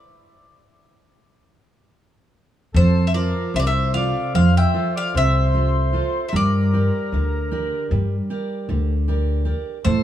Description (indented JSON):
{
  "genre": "greek folk, Greek bouzouki band",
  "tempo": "151 BPM (eighths)",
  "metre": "9/8",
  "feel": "straight",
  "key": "unclear",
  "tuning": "A4 = 441 Hz",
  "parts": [
    { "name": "Greek bouzouki", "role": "melody", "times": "0.0-10.0 s", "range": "C5 to G5", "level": "-24 LUFS", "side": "left 2 dB", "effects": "none" },
    { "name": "mellow accordion", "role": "second line", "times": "2.7-10.0 s", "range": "A4 to E5", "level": "-28 LUFS", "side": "left 1 dB", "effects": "none" },
    { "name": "picked steel-string acoustic guitar", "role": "accompaniment", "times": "2.7-10.0 s", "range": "C3 to D5", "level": "-22 LUFS", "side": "right 3 dB", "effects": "none" },
    { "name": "upright bass", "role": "bass", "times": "2.7-10.0 s", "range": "C2 to A2", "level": "-20 LUFS", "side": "left 1 dB", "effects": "none" }
  ],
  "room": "little or no reverb",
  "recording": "small room ambience",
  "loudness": "-18 LUFS",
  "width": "side -11 dB against mid",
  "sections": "0.0-2.7 A section; 2.7-10.0 B section",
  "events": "speeding up 0.0-10.0; stop 0.0-2.7",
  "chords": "0.0 N.C.; 2.7 F; 6.3 Gm"
}